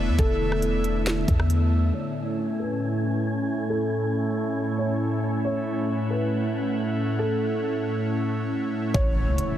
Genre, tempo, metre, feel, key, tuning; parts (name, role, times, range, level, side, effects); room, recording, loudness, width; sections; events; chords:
hip hop, atmospheric cloud-rap; 137 BPM; 4/4; half-time; A major; A4 = 439 Hz
airy breathy pad; sustained chords; 0.0-9.6 s; A2 to E4; -25 LUFS; equal; chorus, sidechain pumping, low-pass filter
warm 808-style bass; bass; 0.0-1.9, 8.9-9.4 s; E1 to E2; -24 LUFS; equal
wind-like tuned noise texture; texture; 0.0-8.9 s; C#4 to G#5; -36 LUFS; equal; built-in reverb
felt-muted upright piano; melody; 0.2-9.6 s; A4 to C#5; -31 LUFS; equal; low-pass filter, digital delay
trap drum kit; drums; 0.2-1.6, 8.9-9.5 s; hi-hat, kick drum, rim click, snare drum; -24 LUFS; equal
impact; sound effects; 9.0-9.6 s; -30 LUFS; right 1 dB
light reverb; heavily compressed radio sound, multiband compression; -23 LUFS; side -11 dB against mid
0.0-1.9 A section; 1.9-8.9 B section
filter sweep 1.9-8.9; impact 8.9-9.6
0.0 E7sus4; 1.9 Amaj7